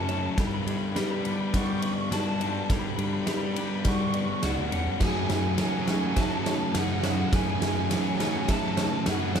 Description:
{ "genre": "post-rock", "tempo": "104 BPM", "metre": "4/4", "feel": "straight", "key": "F# phrygian", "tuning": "A4 = 441 Hz", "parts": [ { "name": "electric guitar through a small old amp", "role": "melody", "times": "0.0-9.4 s", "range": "F#5 to C#6", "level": "-34 LUFS", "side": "right 1 dB", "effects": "slapback echo" }, { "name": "felt-muted upright piano", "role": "arpeggios", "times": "0.0-9.4 s", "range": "G#4 to F#5", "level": "-41 LUFS", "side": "right 6 dB", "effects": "slapback echo" }, { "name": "twelve-string electric guitar", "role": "arpeggios", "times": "0.0-9.4 s", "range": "F#2 to G#4", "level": "-38 LUFS", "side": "left 2 dB", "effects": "none" }, { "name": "thick fuzz guitar", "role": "riff", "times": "0.0-9.4 s", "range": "F#2 to D4", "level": "-32 LUFS", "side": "left 7 dB", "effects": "distortion" }, { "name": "fuzz fingered electric bass", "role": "bass", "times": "0.0-9.4 s", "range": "C#2 to G3", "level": "-31 LUFS", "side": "equal", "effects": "overdrive" }, { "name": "huge arena drum kit", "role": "drums", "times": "0.1-9.4 s", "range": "crash cymbal, kick drum, ride cymbal, snare drum", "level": "-29 LUFS", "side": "right 1 dB", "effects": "none" }, { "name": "thick fuzz guitar", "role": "riff", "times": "5.0-9.4 s", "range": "F#2 to C#4", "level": "-32 LUFS", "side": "right 10 dB", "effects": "distortion" } ], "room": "light reverb", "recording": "none", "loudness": "-24 LUFS", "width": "side -7 dB against mid", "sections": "0.0-9.4 A section", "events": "build-up 0.0-9.4; drum fill 0.0-9.4", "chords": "0.4 Gmaj9#11; 5.0 F#m9" }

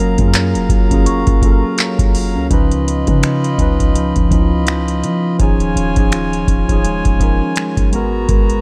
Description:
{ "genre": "contemporary R&B", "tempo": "83 BPM", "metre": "4/4", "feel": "swing 58% on 16ths", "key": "unclear", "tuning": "A4 = 439 Hz", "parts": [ { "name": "mellow tine electric piano", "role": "accompaniment", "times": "0.0-8.6 s", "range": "E#3 to B4", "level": "-21 LUFS", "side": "equal", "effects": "none" }, { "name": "hand-pumped harmonium", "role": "sustained chords", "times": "0.0-8.6 s", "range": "F#3 to B5", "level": "-26 LUFS", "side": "equal", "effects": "none" }, { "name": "mellow electric guitar", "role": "arpeggios", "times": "0.0-8.6 s", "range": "C#3 to A#4", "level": "-26 LUFS", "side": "equal", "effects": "tape echo" }, { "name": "clean 808-style bass", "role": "bass", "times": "0.0-8.6 s", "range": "D#1 to E#3", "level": "-21 LUFS", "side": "equal", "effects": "none" }, { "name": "booming analog drum machine", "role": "drums", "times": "0.2-8.6 s", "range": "finger snaps, handclaps, hi-hat, kick drum", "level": "-17 LUFS", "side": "equal", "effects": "none" }, { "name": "large celesta", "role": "texture", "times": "1.1-2.8 s", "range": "C#6", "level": "-31 LUFS", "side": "equal", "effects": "tape echo" } ], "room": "little or no reverb", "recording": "none", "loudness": "-15 LUFS", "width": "mono", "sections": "0.0-2.5 A section; 2.5-8.6 B section", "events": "none", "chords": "0.0 F#maj7; 2.5 C#9; 5.4 D#9sus4; 7.9 G#m9" }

